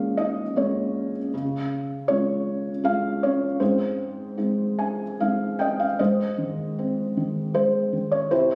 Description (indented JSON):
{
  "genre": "classical, lyrical solo piano",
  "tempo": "78 BPM",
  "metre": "3/4",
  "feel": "rubato",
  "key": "Ab major",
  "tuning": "A4 = 439 Hz",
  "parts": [
    { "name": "felt-muted upright piano", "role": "solo", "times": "0.0-8.6 s", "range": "Ab2 to Ab5", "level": "-25 LUFS", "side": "equal", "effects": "none" }
  ],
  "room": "light reverb",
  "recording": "recorded on a phone in the room, studio reverb, compression",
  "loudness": "-25 LUFS",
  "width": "mono",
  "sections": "0.0-6.0 A section; 6.0-8.6 B section",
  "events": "felt piano fill 4.4-6.0",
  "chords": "0.0 Bbm7; 1.3 Db; 3.6 Ab",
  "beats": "0.56 | 1.33 2.09 2.85 | 3.60 4.38 5.18 | 5.99 6.77 7.55 | 8.30"
}